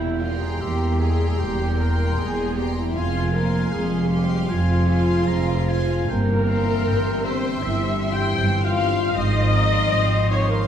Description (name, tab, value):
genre	classical, slow romantic movement for symphony orchestra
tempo	77 BPM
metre	4/4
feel	rubato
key	F minor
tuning	A4 = 440 Hz
part	dark clarinet	second line	0.0-10.7 s	E4 to G5	-34 LUFS	left 2 dB	none
part	mellow hollow flute section	second line	0.0-10.7 s	E5 to G6	-34 LUFS	left 2 dB	none
part	warm oboe	second line	0.0-10.7 s	Bb4 to Bb5	-35 LUFS	equal	none
part	dark symphonic viola section	accompaniment	0.0-10.7 s	E4 to G5	-26 LUFS	left 1 dB	none
part	dark French horn section	sustained chords	0.0-10.7 s	E3 to G4	-30 LUFS	left 3 dB	none
part	dark trombone section	sustained chords	0.0-10.7 s	E3 to C4	-31 LUFS	equal	none
part	rich symphonic double bass section	bass	0.0-10.6 s	E1 to Ab1	-24 LUFS	right 1 dB	none
part	warm symphonic cello section	bass	0.0-10.6 s	E2 to Ab2	-25 LUFS	right 1 dB	none
part	warm symphonic violin section	melody	0.2-10.7 s	C6	-34 LUFS	left 5 dB	none
part	rich chamber violin section	second line	0.2-10.7 s	E5 to Bb5	-37 LUFS	equal	none
room	wet scoring stage reverb, RT60 2.0 s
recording	heard from further back in the room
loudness	-19 LUFS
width	side -9 dB against mid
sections	0.0-10.7 A section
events	none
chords	0.0 C7/E; 3.0 Fm; 6.1 C7/G; 9.1 Fm/Ab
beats	0.61 1.40 2.18 | 2.96 3.73 4.50 5.28 | 6.10 6.87 7.62 8.38 | 9.14 9.92